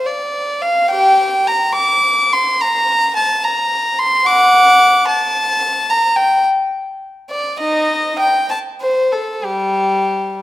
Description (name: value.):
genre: classical, baroque-style suite movement for unaccompanied violin.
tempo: 60-74 BPM (dotted quarters).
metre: 6/8.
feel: rubato.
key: D minor, G minor from 4.3 s.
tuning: A4 = 435 Hz.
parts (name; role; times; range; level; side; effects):
warm violin; solo; 0.0-10.4 s; G3 to D6; -12 LUFS; equal; none.
room: wet recital hall reverb, RT60 1.6 s.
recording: none.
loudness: -12 LUFS.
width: side -15 dB against mid.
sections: 0.0-10.4 A section.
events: none.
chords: none.